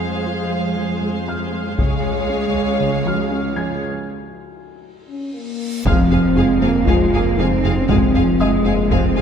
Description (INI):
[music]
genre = cinematic, hybrid orchestral and electronic film score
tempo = 118 BPM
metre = 4/4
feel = straight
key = F phrygian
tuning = A4 = 440 Hz
[part]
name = rich symphonic violin section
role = second line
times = 0.0-9.2 s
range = C5 to F5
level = -27 LUFS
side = left 3 dB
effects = none
[part]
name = warm symphonic viola section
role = accompaniment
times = 0.0-9.2 s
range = Ab3 to Ab4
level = -26 LUFS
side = right 2 dB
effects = none
[part]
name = rich symphonic cello section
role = bass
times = 0.0-9.2 s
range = Db2 to C4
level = -22 LUFS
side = right 1 dB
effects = none
[part]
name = felt-muted upright piano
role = texture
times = 0.0-9.2 s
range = Gb4 to Ab6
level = -30 LUFS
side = left 2 dB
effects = ping-pong delay
[part]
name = glassy wavetable pluck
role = arpeggios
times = 0.3-9.1 s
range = Db3 to F4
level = -27 LUFS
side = right 1 dB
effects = chorus, ping-pong delay
[part]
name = taiko ensemble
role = drums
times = 1.8-2.8, 5.9-9.2 s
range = none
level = -22 LUFS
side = left 1 dB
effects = none
[part]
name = reverse cymbal and impact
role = sound effects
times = 5.6-7.9 s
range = none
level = -25 LUFS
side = left 1 dB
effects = none
[part]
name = mellow French horn section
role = sustained chords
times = 5.1-9.2 s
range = Ab3 to F4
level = -20 LUFS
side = equal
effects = none
[part]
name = warm symphonic violin section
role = melody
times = 5.9-9.2 s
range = Ab5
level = -32 LUFS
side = left 4 dB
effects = none
[part]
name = bright trombone section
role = sustained chords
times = 5.9-9.1 s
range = F3 to Ab3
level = -30 LUFS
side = equal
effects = none
[part]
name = clear symphonic double bass section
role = bass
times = 5.9-9.2 s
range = F1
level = -23 LUFS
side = right 2 dB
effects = none
[part]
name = detuned saw bass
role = bass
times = 5.9-9.2 s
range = F1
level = -23 LUFS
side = left 1 dB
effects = none
[sound]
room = wet scoring stage reverb, RT60 1.9 s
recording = heard from further back in the room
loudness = -16 LUFS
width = side -7 dB against mid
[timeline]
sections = 0.0-5.9 A section; 5.9-9.2 B section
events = break 3.8-5.9; drum fill 5.1-5.9; reverse cymbal 5.6; impact 5.9-7.9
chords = 0.0 Fm; 1.8 Db; 5.9 Fm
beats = 0.26 0.77 1.28 | 1.79 2.30 2.81 3.31 | 3.82 4.33 4.84 5.35 | 5.86 6.37 6.87 7.38 | 7.89 8.40 8.91